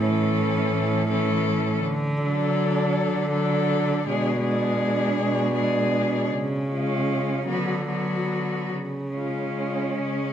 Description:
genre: classical, lyrical piece for cello ensemble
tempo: 47-55 BPM (dotted quarters)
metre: 6/8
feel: rubato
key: unclear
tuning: A4 = 438 Hz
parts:
  - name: rich cello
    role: melody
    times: 0.0-10.3 s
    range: C#4 to A4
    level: -30 LUFS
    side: left 8 dB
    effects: none
  - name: rich cello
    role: second line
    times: 0.0-10.3 s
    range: B3 to D4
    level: -28 LUFS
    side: right 5 dB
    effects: none
  - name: rich cello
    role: accompaniment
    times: 0.0-10.3 s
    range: E3 to G#3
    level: -28 LUFS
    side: left 3 dB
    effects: none
  - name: warm cello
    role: bass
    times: 0.0-10.3 s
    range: A2 to D3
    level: -26 LUFS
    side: right 1 dB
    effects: none
room: moderate recital hall reverb, RT60 1.7 s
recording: none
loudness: -22 LUFS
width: side -9 dB against mid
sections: 0.0-10.3 A section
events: none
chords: 0.0 A; 1.8 D; 4.1 G#dim/B; 6.3 C#; 7.5 Bm/D; 8.7 C#

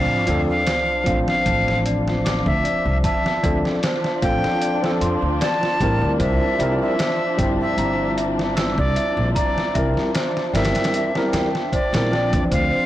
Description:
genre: trip hop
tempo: 76 BPM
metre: 4/4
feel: straight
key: unclear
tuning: A4 = 440 Hz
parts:
  - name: breathy bright jazz flute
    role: melody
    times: 0.0-12.9 s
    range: D5 to A5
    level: -24 LUFS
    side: equal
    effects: tape echo
  - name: overdriven tine electric piano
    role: accompaniment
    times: 0.0-12.9 s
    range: F3 to D5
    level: -24 LUFS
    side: equal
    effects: harmonic tremolo, vintage 12-bit sampler grit
  - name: muted studio string section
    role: sustained chords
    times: 0.0-12.9 s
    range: F3 to C5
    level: -28 LUFS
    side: left 1 dB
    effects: vintage 12-bit sampler grit
  - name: large celesta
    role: arpeggios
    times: 0.0-12.9 s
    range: C5 to E6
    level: -26 LUFS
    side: left 1 dB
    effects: tape echo
  - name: upright bass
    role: bass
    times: 0.0-12.7 s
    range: G1 to F2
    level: -24 LUFS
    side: equal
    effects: tube saturation
  - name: sub drop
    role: sound effects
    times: 0.0-3.0 s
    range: none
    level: -33 LUFS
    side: equal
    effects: none
  - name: trip hop sampler-style drum kit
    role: drums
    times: 0.3-12.7 s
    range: hi-hat, kick drum, snare drum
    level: -25 LUFS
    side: equal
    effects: overdrive, vintage 12-bit sampler grit
room: small room reverb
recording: blown-out, overdriven recording, vinyl crackle, overdrive, faint mains hum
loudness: -18 LUFS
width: side -13 dB against mid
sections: 0.0-12.9 A section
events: impact 0.0-3.0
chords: 0.0 Dm7; 6.2 C7

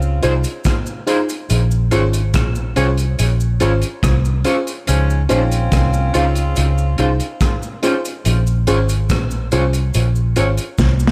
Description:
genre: lovers rock reggae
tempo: 71 BPM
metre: 4/4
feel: straight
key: unclear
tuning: A4 = 439 Hz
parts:
  - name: bright saxophone section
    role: second line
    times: 0.0-6.9 s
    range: Ab2 to F4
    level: -28 LUFS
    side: equal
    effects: tape echo
  - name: vintage muted fingered electric bass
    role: bass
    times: 0.0-11.1 s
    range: Ab1 to Db2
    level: -18 LUFS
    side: equal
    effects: none
  - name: cabasa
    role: percussion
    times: 0.0-11.1 s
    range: none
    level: -36 LUFS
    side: equal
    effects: none
  - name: FM electric piano with soft pad layer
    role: accompaniment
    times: 0.2-10.5 s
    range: Db4 to C5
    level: -25 LUFS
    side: equal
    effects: chorus, tape echo
  - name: electric guitar at the edge of break-up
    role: stabs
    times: 0.2-10.5 s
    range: Db4 to Db5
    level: -27 LUFS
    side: equal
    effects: analog chorus, tape echo
  - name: crunchy breakbeat drum kit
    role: drums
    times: 0.2-11.1 s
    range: hi-hat, kick drum, rim click, snare drum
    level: -23 LUFS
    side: equal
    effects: gated reverb
room: light reverb, studio reverb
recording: none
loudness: -17 LUFS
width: mono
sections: 0.0-11.1 A section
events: drum fill 10.8-11.1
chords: 0.0 Dbmaj7; 1.5 Bbm7; 4.9 Dbmaj7; 8.3 Bbm7

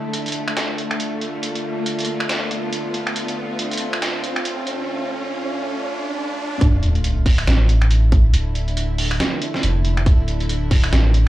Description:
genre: deep dubstep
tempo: 139 BPM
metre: 4/4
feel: swing 58% on 16ths, half-time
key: D minor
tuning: A4 = 439 Hz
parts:
  - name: bowed-like drone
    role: sustained chords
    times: 0.0-11.3 s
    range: D3 to F4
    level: -26 LUFS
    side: equal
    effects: built-in reverb, vintage 12-bit sampler grit
  - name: riser and sub drop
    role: sound effects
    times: 0.0-8.3 s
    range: none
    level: -26 LUFS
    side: right 1 dB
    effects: none
  - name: trip hop sampler-style drum kit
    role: drums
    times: 0.1-11.2 s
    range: finger snaps, hi-hat, snare drum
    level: -24 LUFS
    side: right 1 dB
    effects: overdrive, high-pass filter on hats, high-pass filter on snare, high-pass filter on room
  - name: soft dub sub bass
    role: bass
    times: 6.6-11.3 s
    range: D1 to A1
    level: -17 LUFS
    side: equal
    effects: tube saturation
  - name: electronic kick drum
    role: drums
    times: 6.6-10.8 s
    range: none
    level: -15 LUFS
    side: equal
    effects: none
room: light reverb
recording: dry, gritty hardware recording, cassette tape, high-pass filter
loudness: -18 LUFS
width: side -15 dB against mid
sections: 0.0-6.6 A section; 6.6-11.3 B section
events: build-up 0.0-6.6; riser 0.0-6.6; filter sweep 0.0-6.6; drop 6.6-11.3; impact 6.6-8.3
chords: 0.0 Dm; 6.6 D5

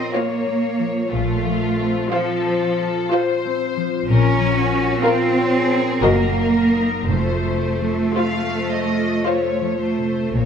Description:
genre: classical, slow romantic movement for symphony orchestra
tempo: 54-63 BPM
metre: 3/4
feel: rubato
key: unclear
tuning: A4 = 440 Hz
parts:
  - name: rich symphonic violin section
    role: melody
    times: 0.0-10.5 s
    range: F4 to F5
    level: -27 LUFS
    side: left 4 dB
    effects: none
  - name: concert harp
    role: arpeggios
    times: 0.0-10.5 s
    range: F2 to Eb5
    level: -22 LUFS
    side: left 4 dB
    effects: none
  - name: rich symphonic cello section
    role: bass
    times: 0.0-10.5 s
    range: F3 to Db4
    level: -21 LUFS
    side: right 2 dB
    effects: none
  - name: warm symphonic viola section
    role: accompaniment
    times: 0.1-10.1 s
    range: F4 to Bb4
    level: -25 LUFS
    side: equal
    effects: none
  - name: rich symphonic violin section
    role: second line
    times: 0.2-10.1 s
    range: Bb4 to F5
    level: -25 LUFS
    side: left 2 dB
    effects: none
  - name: rich symphonic double bass section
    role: bass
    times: 1.1-10.5 s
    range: F1 to Bb1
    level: -23 LUFS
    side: right 2 dB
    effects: none
room: moderate scoring stage reverb, RT60 1.9 s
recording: none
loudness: -17 LUFS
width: side -7 dB against mid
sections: 0.0-10.5 A section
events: none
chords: 0.0 Bbm; 1.1 F/Bb; 4.1 Bbm; 6.0 Ebm/Gb; 7.1 F

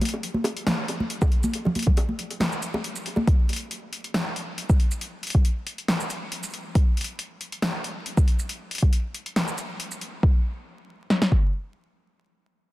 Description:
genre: dubstep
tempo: 138 BPM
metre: 4/4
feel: swing 53% on 16ths, half-time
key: none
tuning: none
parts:
  - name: deep house drum kit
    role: drums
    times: 0.0-10.1 s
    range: hi-hat, shaker, snare drum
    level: -28 LUFS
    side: equal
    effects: overdrive
  - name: congas and bongos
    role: percussion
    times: 0.0-3.3 s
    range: none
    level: -28 LUFS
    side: equal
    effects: dub echo
  - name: deep house drum kit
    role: drums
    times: 1.2-11.4 s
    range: kick drum, snare drum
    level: -20 LUFS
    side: equal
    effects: overdrive
room: light reverb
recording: dense, heavily limited modern master, vinyl crackle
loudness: -23 LUFS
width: side -17 dB against mid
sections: 0.0-10.2 A section; 10.2-12.7 B section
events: none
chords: none

